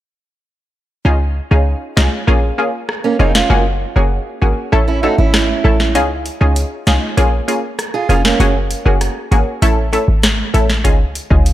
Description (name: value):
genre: dancehall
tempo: 98 BPM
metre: 4/4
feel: straight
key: Db major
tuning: A4 = 442 Hz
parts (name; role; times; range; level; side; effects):
- punchy chord stab; accompaniment; 1.0-11.5 s; A3 to A4; -18 LUFS; left 1 dB; chorus, sidechain pumping
- short 808-style bass; bass; 1.1-11.5 s; F1 to Db2; -14 LUFS; equal; none
- booming analog drum machine; drums; 2.0-11.5 s; hi-hat, kick drum, rim click, snare drum; -18 LUFS; equal; none
- fingerpicked old ladder-braced acoustic guitar; arpeggios; 3.0-8.5 s; Bb3 to Ab4; -18 LUFS; right 5 dB; tape echo
room: digital ambience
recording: dry, gritty hardware recording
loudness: -12 LUFS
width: side -14 dB against mid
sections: 1.1-11.5 A section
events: kick muted 1.1-10.8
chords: 1.1 Dbadd9; 2.3 Bbm7; 3.5 Gbadd9; 4.7 A; 6.0 Dbadd9; 7.2 Bbm7; 8.4 Gbadd9; 9.6 A; 10.8 Dbadd9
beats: | 1.05 1.67 2.28 2.89 | 3.50 4.11 4.73 5.34 | 5.95 6.56 7.17 7.79 | 8.40 9.01 9.62 10.24 | 10.85 11.46